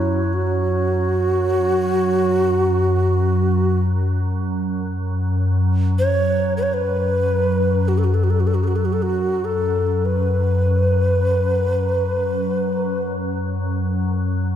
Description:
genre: world meditative, free-time meditation music.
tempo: free time.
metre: none.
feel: none.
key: F# minor pentatonic.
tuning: A4 = 440 Hz.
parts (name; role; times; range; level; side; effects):
breathy mellow low Native American-style wooden flute; melody; 0.0-13.1 s; E4 to C#5; -21 LUFS; equal; tape echo.
soft additive organ-like pad; drone; 0.0-14.6 s; F#2; -19 LUFS; equal; ensemble chorus, built-in reverb.
glass harmonica; texture; 0.0-2.3 s; C#5; -30 LUFS; right 4 dB; stereo widening.
room: wet scoring stage reverb, RT60 1.7 s.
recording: none.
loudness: -17 LUFS.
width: side -10 dB against mid.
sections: 0.0-14.6 A section.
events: none.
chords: none.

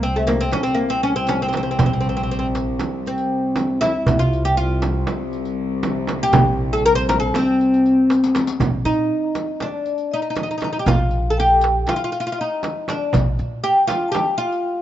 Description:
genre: Turkish makam ensemble.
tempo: 238 BPM (eighths).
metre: 9/8.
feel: straight.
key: C makam hicaz.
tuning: A4 = 441 Hz.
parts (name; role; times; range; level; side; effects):
oud; melody; 0.0-14.8 s; A3-40c to C5; -19 LUFS; left 1 dB; none.
upright bass; bass; 0.0-13.6 s; Bb1 to Bb2; -23 LUFS; equal; none.
dark symphonic cello section; drone; 0.0-8.7 s; C2; -26 LUFS; left 1 dB; none.
darbuka; percussion; 0.2-14.5 s; none; -22 LUFS; right 2 dB; none.
frame drum; percussion; 0.3-14.3 s; none; -26 LUFS; right 5 dB; none.
riq; percussion; 0.3-14.6 s; none; -36 LUFS; left 7 dB; none.
vibraphone with medium mallets; second line; 8.9-14.8 s; D5 to A5; -25 LUFS; left 5 dB; none.
room: light reverb, small room ambience.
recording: rough home demo mix, nothing above 7.7 kHz.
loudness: -17 LUFS.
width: side -12 dB against mid.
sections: 0.0-8.6 A section; 8.6-14.8 B section.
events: drum fill 8.1-8.6.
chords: none.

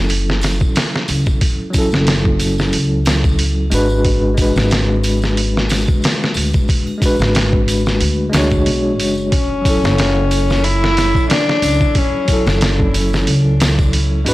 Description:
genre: trip hop.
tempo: 91 BPM.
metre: 4/4.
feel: swing 56% on 16ths.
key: F# minor.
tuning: A4 = 441 Hz.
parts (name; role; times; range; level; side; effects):
bell-like tine electric piano; accompaniment; 0.0-14.3 s; F#3 to C#5; -20 LUFS; equal; tremolo, tape echo.
upright bass; bass; 0.0-14.3 s; F#1 to D2; -17 LUFS; equal; transformer saturation.
trip hop sampler-style drum kit; drums; 0.1-14.3 s; hi-hat, kick drum, snare drum; -17 LUFS; equal; studio reverb.
tambourine and triangle; percussion; 0.1-14.3 s; none; -31 LUFS; equal; none.
warm cello; melody; 9.3-12.6 s; C#4 to E4; -18 LUFS; left 2 dB; tape echo.
room: light reverb, small room ambience.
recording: blown-out, overdriven recording, vinyl crackle, overdrive.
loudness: -13 LUFS.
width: side -17 dB against mid.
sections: 0.0-14.3 A section.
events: none.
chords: 0.0 F#m7; 4.0 G#m7b5; 9.3 F#m7.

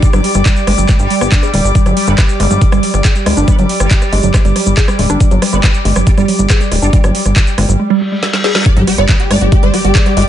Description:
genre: psychedelic trance.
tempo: 139 BPM.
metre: 4/4.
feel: straight.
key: unclear.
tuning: A4 = 440 Hz.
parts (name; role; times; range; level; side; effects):
metallic wobble bass; second line; 0.0-9.2 s; G3 to B3; -28 LUFS; right 2 dB; wide subtle chorus, sidechain pumping, high-pass filter, dub echo.
bubbling stepped-filter texture; sustained chords; 0.0-10.3 s; G3; -22 LUFS; right 2 dB; chorus, built-in reverb, sidechain pumping.
woody wave-folded pluck; riff; 0.0-10.2 s; F#3 to Ab4; -16 LUFS; moving between left 4 dB and right 6 dB; chorus, auto-pan, sidechain pumping, ping-pong delay.
electronic kick drum; drums; 0.0-10.0 s; none; -11 LUFS; equal; overdrive.
garage drum kit; drums; 0.0-10.3 s; handclaps, hi-hat, rim click, snare drum; -18 LUFS; right 1 dB; overdrive.
egg shaker; percussion; 0.0-7.8 s; none; -26 LUFS; left 2 dB; none.
dark chamber string section; texture; 0.0-10.3 s; G3 to D6; -22 LUFS; left 3 dB; sidechain pumping.
plucky analog bass; bass; 0.1-10.2 s; D1 to G1; -14 LUFS; equal; none.
reverse cymbal and impact; sound effects; 8.0-10.3 s; none; -22 LUFS; left 2 dB; none.
swarming rave lead; melody; 8.7-10.2 s; G4 to D5; -17 LUFS; left 1 dB; chorus, phaser, sidechain pumping, dub echo.
room: light reverb.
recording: nothing above 10.9 kHz.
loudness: -9 LUFS.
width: side -11 dB against mid.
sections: 0.0-8.7 A section; 8.7-10.3 B section.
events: reverse cymbal 8.0-8.7; drum fill 8.2-8.7; band accent 8.6; drop 8.7-10.3; impact 8.7-10.3.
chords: 0.0 G5.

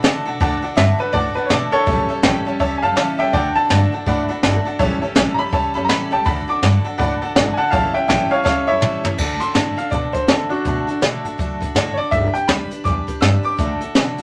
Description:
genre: rockabilly.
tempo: 164 BPM.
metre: 4/4.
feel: swing 62% on 8ths.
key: D major.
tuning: A4 = 442 Hz.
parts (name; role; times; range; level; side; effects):
honky-tonk upright piano; accompaniment; 0.0-9.1 s; C#5 to B5; -28 LUFS; equal; none.
picked steel-string acoustic guitar; accompaniment; 0.0-14.2 s; A2 to B4; -26 LUFS; equal; none.
upright bass; bass; 0.0-14.2 s; G1 to D3; -25 LUFS; equal; none.
jazz brush drum kit; drums; 0.0-14.2 s; crash cymbal, hi-hat, kick drum, snare drum, toms; -22 LUFS; equal; none.
bright upright piano; melody; 0.8-14.2 s; D4 to E6; -22 LUFS; equal; none.
room: moderate studio ambience, RT60 0.5 s.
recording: none.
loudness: -18 LUFS.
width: mono.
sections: 0.0-9.2 A section; 9.2-14.2 B section.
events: honky-tonk piano fill 0.0-0.4; drum fill 8.5-9.2.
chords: 0.0 D; 1.9 A7; 3.3 D; 4.8 A7; 6.3 D; 7.7 A7; 9.2 D; 12.1 G; 13.6 D.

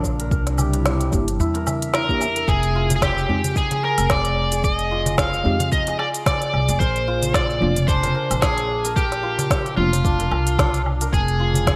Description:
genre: organic downtempo.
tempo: 111 BPM.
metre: 4/4.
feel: swing 56% on 16ths.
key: F dorian.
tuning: A4 = 439 Hz.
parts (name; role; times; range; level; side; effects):
warm analog pad; sustained chords; 0.0-2.5, 11.6-11.8 s; C3 to G5; -31 LUFS; equal; chorus, sidechain pumping.
santur; arpeggios; 0.0-11.8 s; D4 to E5; -30 LUFS; equal; delay.
upright bass; bass; 0.0-11.8 s; F1 to F2; -26 LUFS; equal; sidechain pumping.
electronic kick drum; drums; 0.0-11.8 s; none; -25 LUFS; equal; studio reverb.
organic electronic drum kit; drums; 0.0-11.8 s; hi-hat, shaker, snare drum, woodblock; -28 LUFS; equal; studio reverb, gated reverb.
darbuka; percussion; 0.6-11.6 s; none; -31 LUFS; equal; none.
mellow tine electric piano; accompaniment; 1.1-9.9 s; F3 to G4; -29 LUFS; equal; sidechain pumping, delay.
overdriven slide guitar; melody; 2.0-11.8 s; F4 to F5; -25 LUFS; equal; delay.
room: moderate plate reverb, RT60 2.0 s, digital ambience.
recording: bright 1980s-style digital production.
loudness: -20 LUFS.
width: mono.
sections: 0.0-2.5 A section; 2.5-11.8 B section.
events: filter sweep on tine electric piano 0.0-2.5.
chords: 0.3 C7; 2.5 Fm7; 6.8 Bb; 11.1 Fm.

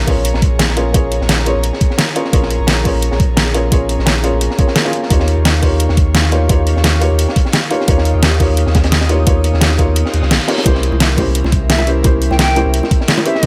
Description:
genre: liquid drum and bass.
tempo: 173 BPM.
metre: 4/4.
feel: swing 54% on 16ths.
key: Bb dorian.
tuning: A4 = 440 Hz.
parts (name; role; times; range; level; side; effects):
felt-muted upright piano; accompaniment; 0.0-13.5 s; Bb3 to F5; -21 LUFS; equal; digital delay.
airy breathy pad; sustained chords; 0.0-13.5 s; G4 to Eb6; -29 LUFS; equal; chorus, vintage 12-bit sampler grit, sidechain pumping.
warm sub bass; bass; 0.0-13.5 s; Bb1 to Eb2; -18 LUFS; equal; none.
crunchy breakbeat drum kit; drums; 0.0-13.5 s; hi-hat, snare drum; -25 LUFS; equal; high-pass filter on hats, high-pass filter on snare, high-pass filter on room.
sub drop and reverse cymbal; sound effects; 0.0-0.9, 10.1-10.7 s; none; -30 LUFS; equal; none.
electronic kick drum; drums; 0.1-13.5 s; none; -16 LUFS; equal; overdrive.
pop drum kit; drums; 0.1-13.5 s; hi-hat, snare drum; -18 LUFS; equal; overdrive.
bongos; percussion; 10.7-13.5 s; none; -24 LUFS; equal; none.
hollow concert flute; melody; 11.7-13.5 s; E5 to G5; -22 LUFS; equal; none.
room: light reverb.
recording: none.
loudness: -14 LUFS.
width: mono.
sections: 0.0-13.5 A section.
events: impact 0.0-0.9; kick drops out 10.0-10.7; reverse cymbal 10.1-10.7.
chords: 0.0 Bbm7; 5.1 Eb9; 10.7 C7b9.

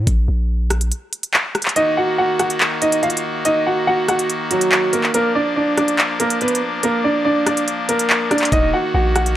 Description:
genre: hip hop, drill.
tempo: 142 BPM.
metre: 4/4.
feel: half-time.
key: Eb harmonic minor.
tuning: A4 = 440 Hz.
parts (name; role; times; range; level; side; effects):
long sustained 808-style bass; bass; 0.0-0.9, 8.5-9.3 s; Eb1 to Bb1; -18 LUFS; equal; none.
drill drum kit; drums; 0.1-9.4 s; handclaps, hi-hat, kick drum, rim click; -18 LUFS; equal; none.
clear concert grand piano; melody; 1.8-9.3 s; Gb3 to Gb5; -17 LUFS; right 1 dB; low-pass filter.
pipe organ, trumpet; sustained chords; 1.8-9.4 s; Eb3 to Gb4; -23 LUFS; left 2 dB; none.
room: small room reverb.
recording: dry, gritty hardware recording.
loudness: -15 LUFS.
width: side -12 dB against mid.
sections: 0.0-9.4 A section.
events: break 0.0-1.8; kick muted 1.8-8.5.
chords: 0.0 N.C.; 1.8 Ebm; 5.1 Bb; 8.5 Ebm.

